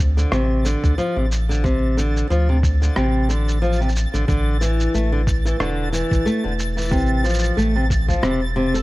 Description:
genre	folktronica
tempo	91 BPM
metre	4/4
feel	swing 56% on 16ths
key	unclear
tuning	A4 = 440 Hz
part	warm sub bass	bass	0.0-8.8 s	E1 to D2	-20 LUFS	equal	none
part	twinkling granular texture	texture	0.0-8.8 s	A6	-32 LUFS	right 2 dB	built-in reverb
part	flamenco guitar	arpeggios	0.2-8.8 s	C3 to A4	-22 LUFS	equal	digital delay
part	electronic shaker and rim click	drums	0.2-8.8 s	none	-29 LUFS	right 1 dB	none
part	electronic kick drum	drums	0.8-8.2 s	none	-21 LUFS	equal	none
room	digital ambience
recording	dark, warm production, vinyl crackle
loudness	-17 LUFS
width	side -19 dB against mid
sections	0.0-8.8 A section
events	none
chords	0.0 F/A (rootless); 4.3 Asus4; 6.9 F/A

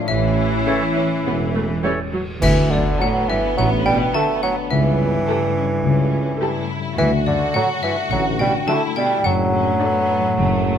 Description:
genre	cinematic, playful, whimsical film cue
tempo	105 BPM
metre	4/4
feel	straight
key	D major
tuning	A4 = 440 Hz
part	xylophone with wooden mallets	melody	0.0-10.8 s	D5 to A5	-25 LUFS	left 5 dB	none
part	rich studio violin section	second line	0.0-10.8 s	A3 to F#4	-28 LUFS	left 3 dB	none
part	mellow French horn section	sustained chords	0.0-2.1 s	E3 to C#4	-26 LUFS	left 4 dB	none
part	concert harp	arpeggios	0.0-10.8 s	F#2 to C#5	-25 LUFS	left 10 dB	none
part	large flute ensemble	second line	0.1-1.8 s	E4	-27 LUFS	left 1 dB	none
part	bright studio cello section	bass	0.1-10.8 s	F#2 to E3	-26 LUFS	right 2 dB	none
part	rich studio double bass section	bass	0.1-10.8 s	E1 to D2	-24 LUFS	right 3 dB	none
part	warm tuba	bass	0.1-10.8 s	E1 to D2	-25 LUFS	right 4 dB	none
part	cymbal swell, clash cymbals and concert bass drum	percussion	0.1-3.5 s	none	-27 LUFS	equal	none
part	warm studio violin section	melody	0.7-10.2 s	C#4 to D5	-32 LUFS	left 2 dB	none
part	warm clarinet	second line	0.7-2.0 s	A4	-31 LUFS	left 1 dB	none
part	warm oboe	second line	0.7-2.0 s	C#5	-30 LUFS	equal	none
part	clear bassoon	accompaniment	0.7-10.8 s	D3 to A3	-21 LUFS	right 2 dB	none
part	rich chamber viola section	accompaniment	0.7-10.2 s	C#3 to A4	-28 LUFS	right 1 dB	none
room	moderate recital hall reverb, RT60 1.5 s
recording	none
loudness	-16 LUFS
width	side -8 dB against mid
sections	0.0-2.4 A section; 2.4-10.8 B section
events	band accent 2.4-3.0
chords	0.1 A; 2.4 D; 4.7 A7/C#; 7.0 D; 9.3 D/F#

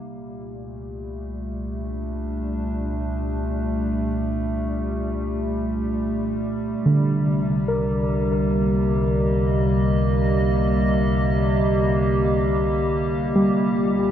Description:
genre	ambient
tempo	71 BPM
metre	4/4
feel	straight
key	C dorian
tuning	A4 = 440 Hz
part	warbly tape-like pad	sustained chords	0.0-14.1 s	Bb2 to Eb5	-22 LUFS	equal	chorus, built-in reverb
part	warm sub bass	bass	0.0-14.1 s	C2	-28 LUFS	equal	none
part	muted felt-like synth keys	arpeggios	6.9-14.1 s	D3 to Bb4	-24 LUFS	right 1 dB	chorus, tape echo
room	wet cathedral reverb, RT60 6.7 s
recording	in a vast, echoing space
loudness	-20 LUFS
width	side -10 dB against mid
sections	0.0-14.1 A section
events	fade-in on ambient pad 0.0-14.1; fade-in on sub bass 0.0-14.1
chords	0.0 Gmadd9/C; 6.8 Cm7; 13.6 Gm/C

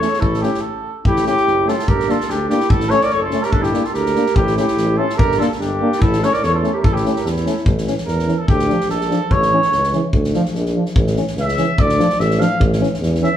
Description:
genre	balkan folk, Balkan brass band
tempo	145 BPM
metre	2/4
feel	swing 53% on 16ths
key	A phrygian dominant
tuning	A4 = 440 Hz
part	warm flugelhorn	melody	0.0-13.4 s	G4 to F5	-19 LUFS	equal	none
part	clear clarinet	second line	0.0-7.7 s	D4 to Bb4	-23 LUFS	right 2 dB	none
part	clear euphonium	accompaniment	0.0-13.3 s	C#4 to D4	-25 LUFS	left 6 dB	none
part	warm trombone	accompaniment	0.0-13.3 s	E3 to Bb3	-24 LUFS	right 3 dB	none
part	mellow tuba	bass	0.0-13.2 s	F#1 to E2	-21 LUFS	equal	none
part	unplugged drum kit	percussion	0.0-13.3 s	kick drum, snare drum	-20 LUFS	equal	none
room	wet large studio reverb, RT60 1.4 s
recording	band playing live in one room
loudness	-14 LUFS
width	side -10 dB against mid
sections	0.0-1.0 A section; 1.0-7.7 A section; 7.7-13.4 B section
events	stop 0.6-1.0; flugelhorn solo 7.7-13.4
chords	0.0 A; 1.9 Gm; 2.7 A; 3.5 Gm; 4.4 A; 5.2 Gm; 6.0 A; 8.5 Dm; 9.3 A; 10.1 Dm; 11.0 A; 11.8 Dm; 12.6 A

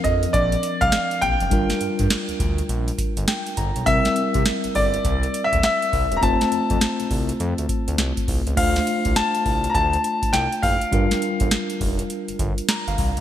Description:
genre	R&B, new jack swing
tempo	102 BPM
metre	4/4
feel	swing 63% on 16ths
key	G minor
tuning	A4 = 440 Hz
part	clear baby grand piano	melody	0.0-11.8 s	D5 to Bb5	-22 LUFS	left 1 dB	none
part	tine electric piano	accompaniment	0.0-13.2 s	F3 to Bb5	-26 LUFS	left 1 dB	medium stereo tremolo
part	smooth synth bass	bass	0.0-13.2 s	E1 to C3	-25 LUFS	equal	none
part	booming analog drum machine	drums	0.0-13.2 s	crash cymbal, hi-hat, kick drum, snare drum	-23 LUFS	equal	none
room	moderate plate reverb, RT60 2.8 s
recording	bright 1980s-style digital production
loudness	-19 LUFS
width	side -11 dB against mid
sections	0.0-8.6 A section; 8.6-13.2 B section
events	tine electric piano fill 3.0-3.9, 12.4-13.2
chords	0.0 Bbadd9; 1.5 Gm7; 3.9 C7; 6.2 F; 8.6 Dm7; 10.9 Gm7

